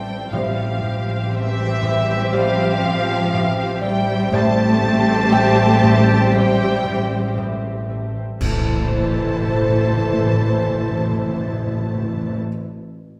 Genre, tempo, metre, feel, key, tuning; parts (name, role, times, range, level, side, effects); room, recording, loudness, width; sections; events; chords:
cinematic, suspense film score; 59 BPM; 4/4; straight; A minor; A4 = 440 Hz
muted symphonic violin section; melody; 0.0-12.4 s; E5 to A5; -28 LUFS; equal
muted studio violin section; second line; 0.0-12.4 s; G4 to C5; -27 LUFS; equal
muted studio viola section; accompaniment; 0.0-12.4 s; E3 to E4; -28 LUFS; equal
concert harp; riff; 0.0-11.8 s; A2 to A3; -27 LUFS; equal
muted symphonic cello section; bass; 0.0-12.4 s; E3 to A3; -26 LUFS; equal
muted symphonic double bass section; bass; 0.0-12.4 s; A1; -26 LUFS; equal
felt-muted upright piano; texture; 0.0-8.4 s; C4 to G5; -31 LUFS; equal
warm French horn section; sustained chords; 0.3-12.4 s; E3 to C5; -28 LUFS; equal
timpani; percussion; 0.3-1.8, 8.4-12.4 s; A2; -26 LUFS; equal
clash cymbals and concert bass drum; percussion; 8.4-10.4 s; -29 LUFS; equal
wet recital hall reverb, RT60 1.4 s; recorded in a church or concert hall; -19 LUFS; mono
0.0-8.4 A section; 8.4-12.5 B section
band accent 8.4-9.4
0.3 Fsus2/A; 8.4 Am